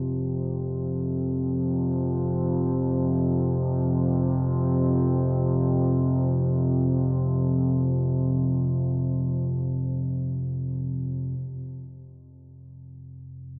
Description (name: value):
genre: ambient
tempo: free time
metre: none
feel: none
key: unclear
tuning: A4 = 440 Hz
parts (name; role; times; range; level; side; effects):
- deep rumbling drone; solo; 0.0-13.6 s; F2 to C3; -23 LUFS; equal; built-in reverb
room: light reverb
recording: echo-heavy mix, small speaker sound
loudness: -22 LUFS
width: side -29 dB against mid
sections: 0.0-11.4 A section; 11.4-13.6 B section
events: none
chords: 0.0 F5